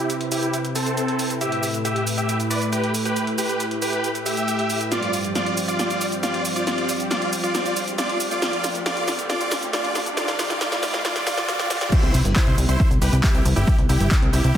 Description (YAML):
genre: uplifting trance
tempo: 137 BPM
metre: 4/4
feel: straight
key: C major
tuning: A4 = 440 Hz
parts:
  - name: big supersaw lead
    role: melody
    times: 0.0-14.6 s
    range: C4 to E5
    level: -24 LUFS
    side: equal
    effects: sidechain pumping, low-pass filter, tape echo
  - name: lush unison pad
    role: sustained chords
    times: 0.0-14.6 s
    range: F2 to B4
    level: -28 LUFS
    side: equal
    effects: chorus, vintage 12-bit sampler grit, sidechain pumping
  - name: punchy analog drum machine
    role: drums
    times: 0.1-14.6 s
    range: crash cymbal, handclaps, hi-hat, shaker, snare drum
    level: -27 LUFS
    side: right 1 dB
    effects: overdrive
  - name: riser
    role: sound effects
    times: 6.1-11.9 s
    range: none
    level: -34 LUFS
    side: right 1 dB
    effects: none
  - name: electronic kick drum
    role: drums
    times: 11.9-14.6 s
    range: none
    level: -19 LUFS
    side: equal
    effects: overdrive
  - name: plucky analog bass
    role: bass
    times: 12.0-14.5 s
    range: G1 to C2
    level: -19 LUFS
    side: equal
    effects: sidechain pumping
room: moderate digital room reverb, RT60 1.0 s, digital ambience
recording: dense, heavily limited modern master, high-pass filter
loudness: -19 LUFS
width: side -10 dB against mid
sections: 0.0-11.9 A section; 11.9-14.6 B section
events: build-up 0.0-11.9; filter sweep on supersaw synth 0.0-11.9; drum fill 4.9-11.9; riser 6.1-11.9; drop 11.9-14.6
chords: 0.0 Cmaj7; 1.4 Asus2; 4.9 G7sus4; 8.4 Fadd9; 11.9 Cmaj7